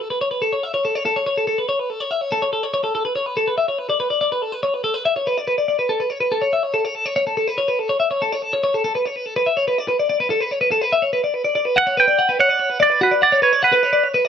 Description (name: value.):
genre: rock.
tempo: 286 BPM (eighths).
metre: 7/8.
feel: straight.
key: unclear.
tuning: A4 = 441 Hz.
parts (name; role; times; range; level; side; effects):
twelve-string electric guitar; arpeggios; 0.0-14.3 s; F#4 to F#5; -18 LUFS; left 2 dB; none.
twangy electric guitar; melody; 11.8-14.1 s; B4 to G5; -15 LUFS; right 4 dB; slapback echo.
room: moderate studio reverb, RT60 1.0 s.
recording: none.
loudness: -17 LUFS.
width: side -8 dB against mid.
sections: 0.0-11.8 A section; 11.8-14.3 B section.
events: none.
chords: 0.0 Aadd9; 5.9 A; 8.8 Aadd9; 11.8 Gmaj7#11 (rootless).